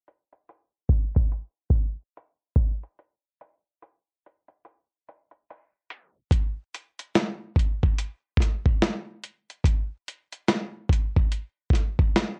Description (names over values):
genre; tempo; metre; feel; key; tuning
hip hop; 72 BPM; 4/4; swing 61% on 16ths; none; none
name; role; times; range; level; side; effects
dusty soul sampler-style drum kit; drums; 0.1-12.4 s; hi-hat, kick drum, snare drum; -24 LUFS; equal; none
room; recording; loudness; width
light reverb; worn, warbling old tape, cassette tape, warbly pitch drift, low-pass filter, tape stop; -26 LUFS; mono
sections
0.0-6.3 A section; 6.3-12.4 B section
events
filter sweep 0.0-6.3; break 3.0-6.3; tape stop 5.9-6.3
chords
none